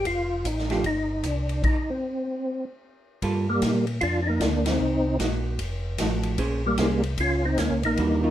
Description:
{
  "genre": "soul jazz organ trio",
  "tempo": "152 BPM",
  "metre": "4/4",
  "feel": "swing 64% on 8ths",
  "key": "unclear",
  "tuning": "A4 = 440 Hz",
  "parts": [
    { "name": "percussive tonewheel organ", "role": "melody", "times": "0.0-8.3 s", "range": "G3 to F4", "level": "-25 LUFS", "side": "equal", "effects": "slow rotary speaker, chorus vibrato" },
    { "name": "mellow tonewheel organ", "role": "bass", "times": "0.0-8.3 s", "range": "F1 to Bb2", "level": "-28 LUFS", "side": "equal", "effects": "slow rotary speaker" },
    { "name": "swinging big-band drum kit", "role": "drums", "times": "0.1-8.1 s", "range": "crash cymbal, hi-hat, kick drum, ride cymbal, snare drum", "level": "-30 LUFS", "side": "left 1 dB", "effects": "none" },
    { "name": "archtop guitar, miked and amplified", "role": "accompaniment", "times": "0.7-0.8, 3.2-8.3 s", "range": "Eb3 to C5", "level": "-29 LUFS", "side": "right 3 dB", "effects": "none" }
  ],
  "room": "moderate studio reverb, RT60 0.8 s",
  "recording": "none",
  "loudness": "-23 LUFS",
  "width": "side -12 dB against mid",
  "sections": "0.0-3.2 A section; 3.2-8.3 B section",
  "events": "stop 1.6-3.2; band accent 4.6",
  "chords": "0.1 F69; 1.6 N.C.; 3.2 Gm9; 4.8 Cm7b5; 5.6 F7b9; 6.4 Bbm9"
}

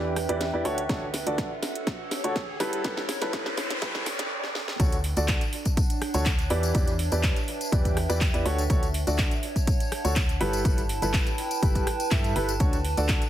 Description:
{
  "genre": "piano house",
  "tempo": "123 BPM",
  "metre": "4/4",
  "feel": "straight",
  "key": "D major",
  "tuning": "A4 = 440 Hz",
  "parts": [
    { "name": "warm upright piano", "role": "riff", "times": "0.0-13.2 s", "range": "D3 to E5", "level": "-30 LUFS", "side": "equal", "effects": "sidechain pumping, tape echo" },
    { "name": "organ-like FM bass", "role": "bass", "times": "0.0-13.2 s", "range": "G1 to G2", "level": "-29 LUFS", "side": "equal", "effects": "sidechain pumping" },
    { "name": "riser and noise sweep", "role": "sound effects", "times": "1.1-4.8 s", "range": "none", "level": "-36 LUFS", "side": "equal", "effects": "none" },
    { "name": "warbly tape-like pad", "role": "texture", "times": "0.0-13.3 s", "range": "D4 to A5", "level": "-34 LUFS", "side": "right 2 dB", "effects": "chorus, built-in reverb, sidechain pumping" },
    { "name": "house drum kit", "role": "drums", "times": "0.2-13.3 s", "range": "handclaps, hi-hat, rim click, snare drum", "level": "-32 LUFS", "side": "equal", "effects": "none" },
    { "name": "electronic kick drum", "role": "drums", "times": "0.9-13.2 s", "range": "none", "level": "-25 LUFS", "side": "equal", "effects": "none" },
    { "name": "tambourine", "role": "percussion", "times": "4.8-13.3 s", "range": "none", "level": "-38 LUFS", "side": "left 4 dB", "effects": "none" }
  ],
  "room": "light reverb, digital ambience",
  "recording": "heavily compressed radio sound, high-pass filter",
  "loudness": "-24 LUFS",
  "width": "side -12 dB against mid",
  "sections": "0.0-4.8 A section; 4.8-13.3 B section",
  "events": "build-up 0.0-4.8; drum fill 0.0-4.3, 4.4-4.8; filter sweep 0.0-4.8; riser 1.1-4.3; noise sweep 2.8-4.8; drop 4.8-13.3",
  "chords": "0.0 Em7; 0.7 Dmaj7; 2.6 G69; 4.8 Dmaj7; 6.5 Em7; 8.5 Dmaj7; 10.4 G69; 12.6 Dmaj7"
}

